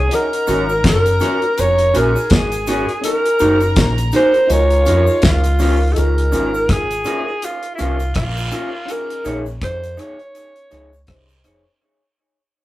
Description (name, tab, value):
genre	lovers rock reggae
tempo	82 BPM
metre	4/4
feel	swing 58% on 16ths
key	Db major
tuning	A4 = 440 Hz
part	bright alto saxophone	melody	0.0-11.1 s	Fb4 to Db5	-18 LUFS	equal	none
part	warm symphonic string section	second line	0.0-5.9 s	F4 to Bb5	-28 LUFS	left 2 dB	none
part	FM electric piano	accompaniment	0.0-11.8 s	Db4 to C5	-27 LUFS	left 1 dB	chorus, phaser
part	deep dub fingered electric bass	bass	0.0-11.6 s	F1 to F2	-18 LUFS	equal	none
part	damped 70s drum kit	drums	0.1-11.6 s	hi-hat, kick drum, rim click, snare drum	-18 LUFS	equal	tape echo
part	cabasa and guiro	percussion	0.1-11.6 s	none	-36 LUFS	right 2 dB	tape echo
part	electric guitar through a small old amp	stabs	0.5-11.6 s	Db4 to Db5	-22 LUFS	equal	tape echo
room	wet studio reverb, RT60 0.5 s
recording	rough rehearsal-room recording, tube saturation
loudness	-14 LUFS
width	side -16 dB against mid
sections	0.0-6.0 A section; 6.0-11.8 B section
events	fade-out 6.0-11.8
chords	0.1 Ab9sus4; 3.0 Gb6; 4.5 Db6; 8.9 Bbm11